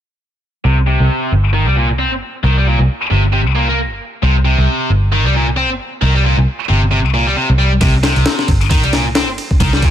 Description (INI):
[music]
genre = breakbeat, breaks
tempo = 134 BPM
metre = 4/4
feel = swing 58% on 16ths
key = C minor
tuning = A4 = 440 Hz
[part]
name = high-gain distorted guitar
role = riff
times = 0.6-9.9 s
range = Bb2 to C4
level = -16 LUFS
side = left 1 dB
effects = distortion, tube saturation, low-pass filter, dub echo
[part]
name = vintage muted picked electric bass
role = bass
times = 0.6-9.9 s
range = G1 to C2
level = -14 LUFS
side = equal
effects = tube saturation, low-pass filter
[part]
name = breakbeat sampler-style drum kit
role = drums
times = 7.8-9.9 s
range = kick drum, ride cymbal, snare drum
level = -14 LUFS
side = equal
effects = none
[sound]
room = little or no reverb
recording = none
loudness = -12 LUFS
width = side -10 dB against mid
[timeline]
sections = 0.6-9.9 A section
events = none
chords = 0.6 C5